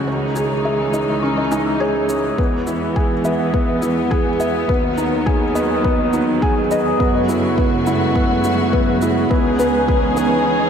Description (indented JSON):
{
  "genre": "piano and strings electronica",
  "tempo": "104 BPM",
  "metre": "4/4",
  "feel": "straight",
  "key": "C# minor",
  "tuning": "A4 = 440 Hz",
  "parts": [
    { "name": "warm chamber string section", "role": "sustained chords", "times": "0.0-10.7 s", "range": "C#3 to G#4", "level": "-21 LUFS", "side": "equal", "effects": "sidechain pumping" },
    { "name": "felt-muted upright piano", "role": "riff", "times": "0.0-10.7 s", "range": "B3 to C#5", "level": "-19 LUFS", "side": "right 1 dB", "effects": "ping-pong delay" },
    { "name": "warm studio cello section", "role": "bass", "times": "0.0-10.5 s", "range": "C#2 to F#2", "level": "-27 LUFS", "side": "right 1 dB", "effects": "sidechain pumping" },
    { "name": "soft round pluck", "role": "arpeggios", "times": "0.1-10.3 s", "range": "B4 to E6", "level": "-25 LUFS", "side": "left 3 dB", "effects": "chorus, sidechain pumping, ping-pong delay" },
    { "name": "shaker", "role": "drums", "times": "0.4-10.3 s", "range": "none", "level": "-40 LUFS", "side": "left 2 dB", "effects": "none" },
    { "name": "electronic kick drum", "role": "drums", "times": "2.4-10.0 s", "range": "none", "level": "-20 LUFS", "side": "equal", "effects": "none" }
  ],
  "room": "wet lush hall reverb, RT60 2.2 s",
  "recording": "dreamy mix soaked in reverb",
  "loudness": "-15 LUFS",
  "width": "side -7 dB against mid",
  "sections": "0.0-10.7 A section",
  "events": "build-up 0.0-10.7",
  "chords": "0.1 C#madd9; 2.4 E; 4.7 B/D#; 7.0 F#madd9; 9.3 C#madd9"
}